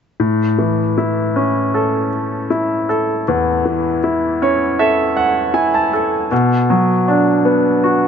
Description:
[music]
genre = pop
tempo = 79 BPM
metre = 4/4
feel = straight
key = A major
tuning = A4 = 437 Hz
[part]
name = clear grand piano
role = solo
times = 0.2-8.1 s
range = E2 to A5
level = -14 LUFS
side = equal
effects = tape echo
[sound]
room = moderate plate reverb, RT60 2.9 s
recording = nothing above 7.8 kHz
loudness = -14 LUFS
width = side -7 dB against mid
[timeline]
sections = 0.2-8.1 A section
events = grand piano fill 4.0-6.3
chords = 0.2 A; 6.3 Bm

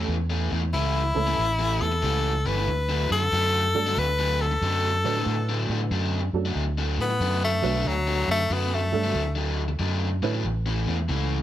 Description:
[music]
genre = electric blues shuffle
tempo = 93 BPM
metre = 4/4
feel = swing 66% on 8ths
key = unclear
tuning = A4 = 440 Hz
[part]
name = honky-tonk upright piano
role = accompaniment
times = 0.0-10.4 s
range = E3 to B4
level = -31 LUFS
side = right 8 dB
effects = none
[part]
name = raw garage guitar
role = riff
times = 0.0-11.4 s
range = A2 to D4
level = -30 LUFS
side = left 2 dB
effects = overdrive
[part]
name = fingered electric bass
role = bass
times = 0.0-11.4 s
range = G1 to A2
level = -26 LUFS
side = equal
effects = none
[part]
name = bright tenor saxophone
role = melody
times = 0.7-9.4 s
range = F#3 to B4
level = -25 LUFS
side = left 2 dB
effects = none
[sound]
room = small room reverb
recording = none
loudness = -22 LUFS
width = side -12 dB against mid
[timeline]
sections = 0.0-11.4 A section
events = tenor saxophone solo 0.0-11.4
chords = 0.0 A; 2.7 D; 10.4 A

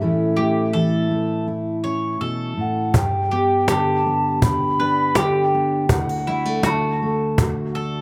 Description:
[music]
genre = acoustic folk duo or small band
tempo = 81 BPM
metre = 4/4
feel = straight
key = D major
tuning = A4 = 440 Hz
[part]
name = mellow hollow alto ocarina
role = second line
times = 0.0-7.4 s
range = E5 to B5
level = -26 LUFS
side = equal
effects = slapback echo
[part]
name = fingerpicked steel-string acoustic guitar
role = accompaniment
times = 0.0-8.0 s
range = D2 to G4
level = -24 LUFS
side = equal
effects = none
[part]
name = mandolin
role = arpeggios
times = 0.4-8.0 s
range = E4 to C#5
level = -27 LUFS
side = equal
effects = slapback echo
[part]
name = cajon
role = percussion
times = 2.9-7.8 s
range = none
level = -23 LUFS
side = equal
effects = none
[sound]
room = little or no reverb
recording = recorded outdoors, with no room sound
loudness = -20 LUFS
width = mono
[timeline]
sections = 0.0-8.0 A section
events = ocarina solo 0.0-8.0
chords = 0.0 A; 2.9 G; 5.9 D

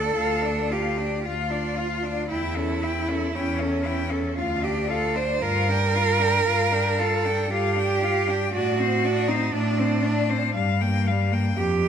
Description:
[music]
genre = classical, lyrical piece for cello ensemble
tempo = 58 BPM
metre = 3/4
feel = rubato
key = D minor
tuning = A4 = 441 Hz
[part]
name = clear cello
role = melody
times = 0.0-11.6 s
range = A4 to G5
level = -30 LUFS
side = left 9 dB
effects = none
[part]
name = warm cello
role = second line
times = 0.0-11.9 s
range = C#4 to C5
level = -24 LUFS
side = right 5 dB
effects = none
[part]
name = clear cello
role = accompaniment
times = 0.0-11.6 s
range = G3 to F4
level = -30 LUFS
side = left 4 dB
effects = none
[part]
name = rich cello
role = bass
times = 0.0-11.9 s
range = D2 to A2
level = -27 LUFS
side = equal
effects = none
[sound]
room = moderate scoring stage reverb, RT60 1.9 s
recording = none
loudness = -21 LUFS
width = side -8 dB against mid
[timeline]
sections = 0.0-11.9 A section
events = none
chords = 0.0 Dm; 2.3 A7/E; 4.4 Dm; 5.4 Gm7; 8.5 D5/A; 10.6 Gm7

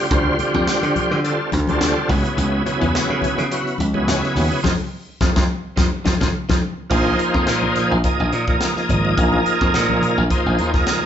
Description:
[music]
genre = electric jazz fusion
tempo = 106 BPM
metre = 4/4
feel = swing 54% on 16ths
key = unclear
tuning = A4 = 440 Hz
[part]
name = bright tonewheel organ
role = accompaniment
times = 0.0-11.1 s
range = C#3 to Eb5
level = -20 LUFS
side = right 1 dB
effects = slow rotary speaker, overdrive, chorus vibrato
[part]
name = slap bass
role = bass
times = 0.1-10.8 s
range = Ab1 to D3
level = -22 LUFS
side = equal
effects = none
[part]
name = crisp fusion drum kit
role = drums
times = 0.1-11.0 s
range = crash cymbal, hi-hat, kick drum, snare drum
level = -23 LUFS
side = equal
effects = none
[part]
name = congas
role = percussion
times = 0.1-10.9 s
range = none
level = -26 LUFS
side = left 2 dB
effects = none
[sound]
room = moderate large studio reverb, RT60 0.9 s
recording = band playing live in one room, nothing above 7.8 kHz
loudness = -16 LUFS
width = side -9 dB against mid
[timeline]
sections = 0.0-6.9 A section; 6.9-11.1 B section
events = band accent 4.6-6.9; drum fill 5.8-6.9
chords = 0.0 Dm7; 2.1 C#m7; 4.6 F5; 6.9 Bb9sus4

